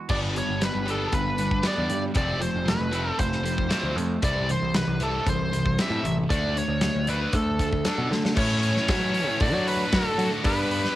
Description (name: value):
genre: quiet-loud alternative rock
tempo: 116 BPM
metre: 4/4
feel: straight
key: unclear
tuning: A4 = 440 Hz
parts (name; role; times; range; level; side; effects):
- twangy electric guitar; arpeggios; 0.0-4.2 s; F3 to C5; -38 LUFS; right 5 dB; phaser, cassette tape, plate reverb, tape echo
- biting lead guitar; melody; 0.1-11.0 s; A4 to E5; -28 LUFS; equal; overdrive, cassette tape, plate reverb, tape echo
- high-gain distorted guitar; riff; 0.1-11.0 s; A2 to G4; -28 LUFS; equal; distortion, cassette tape
- overdriven picked electric bass; bass; 0.1-10.9 s; F1 to F#3; -28 LUFS; equal; none
- big rock drum kit; drums; 0.1-10.9 s; crash cymbal, hi-hat, kick drum, snare drum; -28 LUFS; equal; none
room: light reverb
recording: home recording on cassette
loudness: -22 LUFS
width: side -14 dB against mid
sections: 0.1-8.4 A section; 8.4-11.0 B section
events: drum fill 8.1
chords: 0.1 G; 2.2 Fadd9; 4.2 C; 6.3 D5; 8.4 A6; 9.4 D/A; 10.4 G